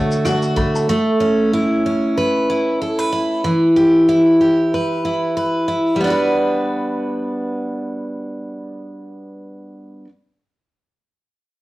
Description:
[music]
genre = acoustic pop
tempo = 94 BPM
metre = 4/4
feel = swing 55% on 16ths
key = G lydian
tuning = A4 = 440 Hz
[part]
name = picked steel-string acoustic guitar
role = accompaniment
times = 0.0-10.1 s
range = D3 to B4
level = -16 LUFS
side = equal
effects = cassette tape
[part]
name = warm upright piano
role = accompaniment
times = 0.0-1.1 s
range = D4 to C#6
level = -28 LUFS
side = left 5 dB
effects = cassette tape
[part]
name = unplugged drum kit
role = drums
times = 0.1-0.9 s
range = kick drum, rim click, shaker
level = -25 LUFS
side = equal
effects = cassette tape
[sound]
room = moderate studio reverb, RT60 0.6 s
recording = home recording on cassette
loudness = -15 LUFS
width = side -18 dB against mid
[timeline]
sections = 0.0-6.0 A section; 6.0-8.6 B section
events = none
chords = 0.0 Dadd9; 0.9 Aadd9; 3.4 Em; 6.0 Gmaj7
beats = 0.25 | 0.89 1.52 2.16 2.80 | 3.44 4.08 4.72 5.36 | 6.00 6.64 7.28 7.92

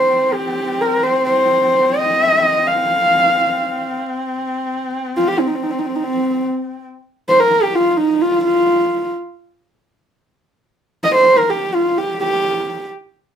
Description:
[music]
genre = mongolian traditional, Mongolian folk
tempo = 128 BPM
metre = 4/4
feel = straight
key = C yu mode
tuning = A4 = 440 Hz
[part]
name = dark horsehead fiddle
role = melody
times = 0.0-12.9 s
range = C4 to F5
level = -14 LUFS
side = equal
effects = none
[part]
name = clear horsehead fiddle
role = drone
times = 0.0-6.8 s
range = C4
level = -25 LUFS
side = left 1 dB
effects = none
[sound]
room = moderate studio reverb, RT60 0.6 s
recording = band playing live in one room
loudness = -14 LUFS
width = side -8 dB against mid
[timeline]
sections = 0.0-6.8 A section; 6.8-13.4 B section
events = none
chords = none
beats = 0.21 0.68 | 1.15 1.62 2.09 2.56 | 3.03 3.50 3.97 4.44 | 4.91 5.38 5.85 6.32 | 6.79 7.26 7.73 8.20 | 8.66 9.13 9.60 10.07 | 10.54 11.02 11.49 11.96 | 12.43

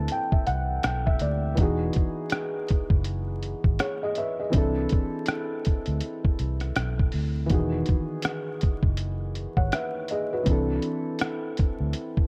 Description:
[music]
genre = lo-fi hip hop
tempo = 81 BPM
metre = 4/4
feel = swing 59% on 16ths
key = E major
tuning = A4 = 436 Hz
[part]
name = felt-muted upright piano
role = accompaniment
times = 0.0-12.3 s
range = D#3 to A5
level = -31 LUFS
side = equal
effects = cassette tape, low-pass filter
[part]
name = vintage muted fingered electric bass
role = bass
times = 0.0-11.9 s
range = E1 to D2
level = -30 LUFS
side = equal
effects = none
[part]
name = lo-fi sampler-style drum kit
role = drums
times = 0.1-12.3 s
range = hi-hat, kick drum, rim click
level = -27 LUFS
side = equal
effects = none
[sound]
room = light reverb, digital ambience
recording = vinyl crackle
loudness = -26 LUFS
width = mono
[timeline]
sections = 0.0-12.3 A section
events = none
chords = 0.0 C6; 1.6 Emaj7; 4.5 C6; 7.5 Emaj7; 10.5 C6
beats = 0.09 0.83 | 1.57 2.31 3.06 3.80 | 4.54 5.28 6.02 6.76 | 7.50 8.24 8.98 9.72 | 10.46 11.20 11.94

